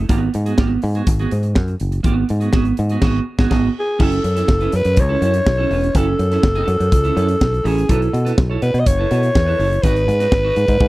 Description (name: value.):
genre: disco.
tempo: 123 BPM.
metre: 4/4.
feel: straight.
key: F# dorian.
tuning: A4 = 440 Hz.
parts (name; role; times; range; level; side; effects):
clean electric guitar; accompaniment; 0.0-10.8 s; B3 to C#5; -23 LUFS; right 6 dB; spring reverb.
fingered electric bass; bass; 0.0-10.9 s; E1 to B2; -18 LUFS; equal; none.
modern studio drum kit; drums; 0.1-10.9 s; crash cymbal, hi-hat, kick drum, snare drum, toms; -17 LUFS; equal; none.
growling alto saxophone; melody; 3.8-10.9 s; G#4 to D#5; -19 LUFS; equal; none.
room: small room ambience.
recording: dry, close 1970s-style studio recording.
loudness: -14 LUFS.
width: side -18 dB against mid.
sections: 0.0-4.0 A section; 4.0-10.9 B section.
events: band accent 3.0-4.0.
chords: 0.1 G#m7; 4.0 F#m7; 7.9 B7sus4; 9.8 G#m7.